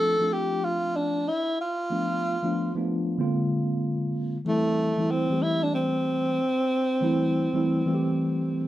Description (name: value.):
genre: hip hop.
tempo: 94 BPM.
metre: 4/4.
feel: swing 64% on 16ths.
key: A phrygian.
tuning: A4 = 437 Hz.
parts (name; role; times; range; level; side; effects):
breathy tenor saxophone; melody; 0.0-8.7 s; A3 to A4; -25 LUFS; equal; none.
mellow tine electric piano; accompaniment; 0.0-8.7 s; D3 to G4; -26 LUFS; equal; slow stereo tremolo.
room: wet studio reverb, RT60 0.7 s.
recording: band playing live in one room.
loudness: -23 LUFS.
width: side -14 dB against mid.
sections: 0.0-8.7 A section.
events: none.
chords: 0.0 Dm7; 1.9 Bm7b5; 3.2 Bb9; 4.5 Am7.